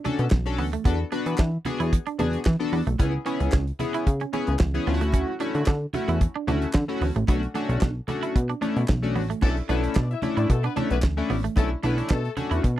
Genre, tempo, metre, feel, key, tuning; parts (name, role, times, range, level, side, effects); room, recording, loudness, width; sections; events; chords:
early-eighties boogie funk; 112 BPM; 4/4; straight; B dorian; A4 = 440 Hz
chorused polysynth; accompaniment; 0.0-12.6 s; A3 to B4; -28 LUFS; left 3 dB
semi-hollow electric guitar; riff; 0.0-12.7 s; A3 to E4; -32 LUFS; right 8 dB; lush chorus
damped 70s drum kit; drums; 0.0-12.8 s; crash cymbal, handclaps, hi-hat, kick drum, snare drum; -22 LUFS; equal
congas; percussion; 0.1-12.5 s; -34 LUFS; right 3 dB
plucky analog bass; bass; 0.2-12.8 s; A1 to E3; -25 LUFS; equal
warm horn section; second line; 9.4-12.8 s; A3 to E5; -32 LUFS; left 8 dB
little or no reverb; dry, close 1970s-style studio recording; -22 LUFS; side -13 dB against mid
0.0-9.4 A section; 9.4-12.8 B section
0.0 Bm9; 0.9 E9sus4; 3.0 C#m7; 4.9 Dmaj9